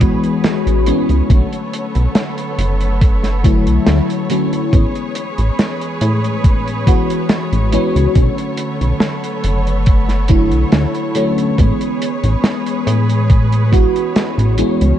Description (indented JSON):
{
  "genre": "vaporwave",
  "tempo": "70 BPM",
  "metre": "4/4",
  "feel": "straight",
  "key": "A major",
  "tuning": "A4 = 440 Hz",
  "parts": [
    { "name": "FM electric piano with soft pad layer", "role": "accompaniment", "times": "0.0-15.0 s", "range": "D3 to F#4", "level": "-18 LUFS", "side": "left 1 dB", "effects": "phaser, wide subtle chorus, analog delay" },
    { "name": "clear studio string section", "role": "sustained chords", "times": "0.0-15.0 s", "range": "B3 to C#5", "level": "-24 LUFS", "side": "right 1 dB", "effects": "none" },
    { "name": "chorused synth bass", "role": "bass", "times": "0.0-14.9 s", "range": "F#1 to A2", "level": "-15 LUFS", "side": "equal", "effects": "tube saturation" },
    { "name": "electronic kick drum", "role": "drums", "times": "0.0-13.9 s", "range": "none", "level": "-12 LUFS", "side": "equal", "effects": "vintage 12-bit sampler grit" },
    { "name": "warm soul drum kit", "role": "drums", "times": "0.0-15.0 s", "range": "hi-hat, snare drum", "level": "-19 LUFS", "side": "right 1 dB", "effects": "vintage 12-bit sampler grit" }
  ],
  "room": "small room ambience",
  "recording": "dark, warm production, cassette tape",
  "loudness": "-13 LUFS",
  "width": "side -11 dB against mid",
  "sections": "0.0-15.0 A section",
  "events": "none",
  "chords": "0.0 Amaj9; 1.3 Bm9; 4.7 Amaj9; 8.2 Bm9; 11.6 Amaj9",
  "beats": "0.44 | 1.30 2.15 3.01 3.87 | 4.73 5.58 6.44 7.30 | 8.15 9.01 9.87 10.73 | 11.58 12.44 13.30 14.15"
}